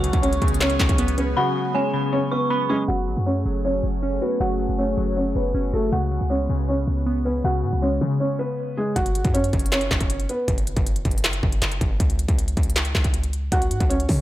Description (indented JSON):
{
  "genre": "hip hop, trap",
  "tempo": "158 BPM",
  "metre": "4/4",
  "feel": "half-time",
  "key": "F# minor",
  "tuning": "A4 = 440 Hz",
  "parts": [
    { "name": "felt-muted upright piano", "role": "melody", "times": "0.0-10.5, 13.5-14.2 s", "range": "G#3 to F#5", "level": "-25 LUFS", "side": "right 1 dB", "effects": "low-pass filter, tape echo" },
    { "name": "dark detuned synth bell", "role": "second line", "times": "0.0-2.9 s", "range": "G#5 to C#6", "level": "-28 LUFS", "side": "right 2 dB", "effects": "chorus, phaser, tape echo" },
    { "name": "glassy digital keys", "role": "accompaniment", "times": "0.0-9.0 s", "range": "C#3 to F#4", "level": "-28 LUFS", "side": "left 3 dB", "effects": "chorus, low-pass filter" },
    { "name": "airy breathy pad", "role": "sustained chords", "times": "0.0-8.2 s", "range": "F#3 to C#5", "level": "-30 LUFS", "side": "right 2 dB", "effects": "chorus, phaser" },
    { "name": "clean 808-style bass", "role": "bass", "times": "0.0-14.2 s", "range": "F#1 to C#3", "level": "-24 LUFS", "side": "equal", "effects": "none" },
    { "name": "industrial drum kit", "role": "drums", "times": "0.0-1.3, 9.0-14.2 s", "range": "handclaps, hi-hat, kick drum, snare drum", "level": "-22 LUFS", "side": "equal", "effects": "distortion" }
  ],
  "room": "little or no reverb",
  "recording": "low-pass filter",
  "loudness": "-20 LUFS",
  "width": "side -14 dB against mid",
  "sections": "0.0-2.9 A section; 2.9-9.0 B section; 9.0-14.2 C section",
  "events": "drums muted 1.4-2.9; filter sweep 2.9-9.0; stop 8.2-9.0",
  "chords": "0.0 C#7sus4; 2.9 F#madd9; 5.9 C#7sus4; 9.0 F#5"
}